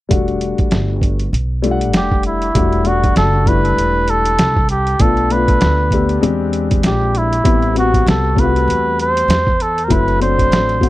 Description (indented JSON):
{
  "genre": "hip hop, jazz-hop",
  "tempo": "98 BPM",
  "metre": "4/4",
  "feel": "swing 57% on 16ths",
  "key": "E minor",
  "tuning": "A4 = 439 Hz",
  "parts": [
    { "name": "dark grand piano", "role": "accompaniment", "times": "0.1-10.9 s", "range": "F#3 to F#5", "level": "-19 LUFS", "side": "left 5 dB", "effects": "none" },
    { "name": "upright bass", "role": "bass", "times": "0.1-10.9 s", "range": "E1 to E2", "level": "-18 LUFS", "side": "right 1 dB", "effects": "none" },
    { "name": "lo-fi sampler-style drum kit", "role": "drums", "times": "0.1-10.9 s", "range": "hi-hat, kick drum, snare drum", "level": "-17 LUFS", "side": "right 1 dB", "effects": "overdrive" },
    { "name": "trumpet with cup mute", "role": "melody", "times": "2.0-10.9 s", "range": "E4 to C5", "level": "-17 LUFS", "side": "right 1 dB", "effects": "tape echo" }
  ],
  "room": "little or no reverb",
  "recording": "dry, close 1970s-style studio recording",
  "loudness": "-12 LUFS",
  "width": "side -16 dB against mid",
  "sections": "0.1-2.6 A section; 2.6-10.9 B section",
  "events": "none",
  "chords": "0.1 Em11; 5.0 Bm7b5; 6.2 E7alt; 7.5 Am9; 9.9 F#m7b5"
}